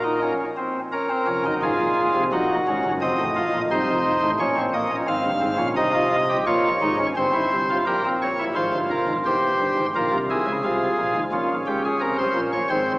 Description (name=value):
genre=classical, baroque-style 3-part fugue for pipe organ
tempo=87 BPM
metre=3/4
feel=straight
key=Bb minor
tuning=A4 = 440 Hz
part: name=pipe organ, cornet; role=solo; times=0.0-13.0 s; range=E1 to F5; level=-20 LUFS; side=equal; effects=none
room=wet church reverb, RT60 3.2 s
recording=heard from further back in the room, small speaker sound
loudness=-20 LUFS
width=side -23 dB against mid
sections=0.9-9.3 A section; 9.3-13.0 B section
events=none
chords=0.0 Bbm; 2.3 Gb69; 3.0 F7; 4.4 Bbm; 5.1 Fm; 6.5 Db69; 7.2 C7/G; 8.6 Fm; 9.3 C/E; 10.7 Fm/C; 11.3 Bbm